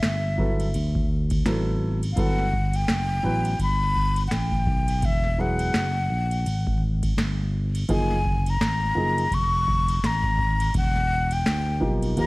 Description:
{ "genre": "hip hop, jazz-hop", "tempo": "84 BPM", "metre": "4/4", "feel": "swing 58% on 16ths", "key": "unclear", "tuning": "A4 = 445 Hz", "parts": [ { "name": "breathy mellow silver concert flute", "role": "melody", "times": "0.0-12.3 s", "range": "E5 to C#6", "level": "-26 LUFS", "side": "left 2 dB", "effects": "none" }, { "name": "sustaining fretless electric bass", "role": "bass", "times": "0.0-12.3 s", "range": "E1 to Eb2", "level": "-25 LUFS", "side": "equal", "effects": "none" }, { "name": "booming analog drum machine", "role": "drums", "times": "0.0-12.3 s", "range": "hi-hat, kick drum, ride cymbal, snare drum", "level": "-27 LUFS", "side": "equal", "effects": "none" }, { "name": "warm upright piano", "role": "accompaniment", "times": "0.4-12.3 s", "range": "E#3 to B4", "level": "-28 LUFS", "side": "right 1 dB", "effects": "none" } ], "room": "little or no reverb", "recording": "vinyl crackle", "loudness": "-21 LUFS", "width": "side -22 dB against mid", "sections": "0.0-12.3 A section", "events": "none", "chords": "0.0 Asus2; 0.7 Dadd9; 2.2 Gmaj7; 5.0 Eadd9; 7.9 F#maj9; 10.7 Em7" }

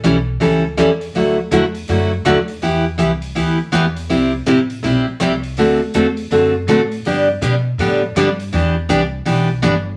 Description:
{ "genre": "country, western swing", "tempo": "163 BPM", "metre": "4/4", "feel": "swing 63% on 8ths", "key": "unclear", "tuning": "A4 = 440 Hz", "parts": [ { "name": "picked steel-string acoustic guitar", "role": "accompaniment", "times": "0.0-9.7 s", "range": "C3 to A4", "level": "-17 LUFS", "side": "equal", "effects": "none" }, { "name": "upright bass", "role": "bass", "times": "0.0-10.0 s", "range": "G1 to B2", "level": "-26 LUFS", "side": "equal", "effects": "none" }, { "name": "swinging big-band drum kit", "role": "drums", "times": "0.0-9.7 s", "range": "hi-hat, rim click", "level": "-36 LUFS", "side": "equal", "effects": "none" } ], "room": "wet studio reverb, RT60 0.6 s", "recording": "none", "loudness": "-16 LUFS", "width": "mono", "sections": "0.0-10.0 A section", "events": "none", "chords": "0.0 A7; 1.1 Dadd9; 2.6 Em; 4.1 C; 5.6 D7; 7.0 G; 8.5 Em7" }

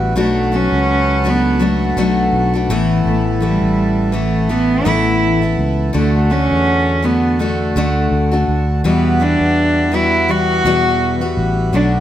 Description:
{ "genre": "acoustic pop", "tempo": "83 BPM", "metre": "4/4", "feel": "swing 55% on 16ths", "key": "unclear", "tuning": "A4 = 440 Hz", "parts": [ { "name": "picked steel-string acoustic guitar", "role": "accompaniment", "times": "0.0-12.0 s", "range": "E2 to F#4", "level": "-18 LUFS", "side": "left 4 dB", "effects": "none" }, { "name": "pedal harmonium", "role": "sustained chords", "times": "0.0-12.0 s", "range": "G3 to B5", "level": "-25 LUFS", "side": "right 3 dB", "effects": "none" }, { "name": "sustaining fretless electric bass", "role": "bass", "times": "0.0-12.0 s", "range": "A1 to E2", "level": "-18 LUFS", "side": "right 1 dB", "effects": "none" }, { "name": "warm cello", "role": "melody", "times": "0.2-11.9 s", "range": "G3 to F#4", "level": "-17 LUFS", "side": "right 2 dB", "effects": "slapback echo" } ], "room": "light reverb", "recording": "none", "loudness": "-13 LUFS", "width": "side -11 dB against mid", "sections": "0.0-12.0 A section", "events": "none", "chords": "0.2 Bm7; 2.7 Asus2; 6.0 D; 8.8 Emadd9" }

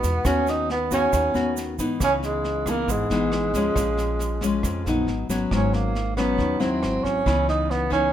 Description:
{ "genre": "bossa nova", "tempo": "137 BPM", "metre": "4/4", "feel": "straight", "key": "G# minor", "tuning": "A4 = 440 Hz", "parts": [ { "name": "breathy tenor saxophone", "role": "melody", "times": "0.0-8.1 s", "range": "G#3 to D#4", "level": "-24 LUFS", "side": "right 3 dB", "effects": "none" }, { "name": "nylon-string guitar", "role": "accompaniment", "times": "0.0-8.1 s", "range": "E#2 to F#4", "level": "-25 LUFS", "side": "left 3 dB", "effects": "none" }, { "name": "upright bass", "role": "bass", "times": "0.0-8.1 s", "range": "G#1 to G#2", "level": "-29 LUFS", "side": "equal", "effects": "none" }, { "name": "vintage brush drum kit", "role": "drums", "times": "0.0-8.0 s", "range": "kick drum, rim click, snare drum", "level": "-31 LUFS", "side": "equal", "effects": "none" }, { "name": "tube shaker", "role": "percussion", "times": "0.0-5.5 s", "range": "none", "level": "-37 LUFS", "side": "right 12 dB", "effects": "none" } ], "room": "light reverb", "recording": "minimal, uncompressed stereo recording", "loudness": "-21 LUFS", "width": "side -10 dB against mid", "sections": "0.0-5.5 A section; 5.5-8.1 A section", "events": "none", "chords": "0.3 G#m7/D# (rootless); 2.0 C#m9; 3.8 A#m7; 5.1 G#m7; 5.5 G#m11; 6.8 G#aug7; 7.3 C#m9" }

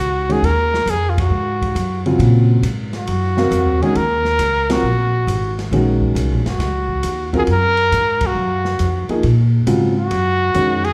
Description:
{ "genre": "modal jazz", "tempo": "136 BPM", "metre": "4/4", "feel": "swing 68% on 8ths", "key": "Eb dorian", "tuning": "A4 = 441 Hz", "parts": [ { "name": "breathy trumpet", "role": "melody", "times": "0.0-10.9 s", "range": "F4 to Bb4", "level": "-21 LUFS", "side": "equal", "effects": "none" }, { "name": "upright bass", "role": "bass", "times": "0.0-10.9 s", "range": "Gb1 to Bb2", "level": "-21 LUFS", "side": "equal", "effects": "none" }, { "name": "warm concert grand piano", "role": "accompaniment", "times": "0.3-10.8 s", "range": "Db3 to F5", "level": "-21 LUFS", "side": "equal", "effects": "none" }, { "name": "open jazz drum kit", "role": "drums", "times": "0.3-10.9 s", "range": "hi-hat, kick drum, ride cymbal, snare drum", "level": "-31 LUFS", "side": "equal", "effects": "none" } ], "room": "moderate recital hall reverb, RT60 1.5 s", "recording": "recorded in a church or concert hall", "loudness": "-17 LUFS", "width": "mono", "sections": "0.0-10.9 A section", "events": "band accent 1.1, 4.6, 8.1", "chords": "0.0 Ebm11" }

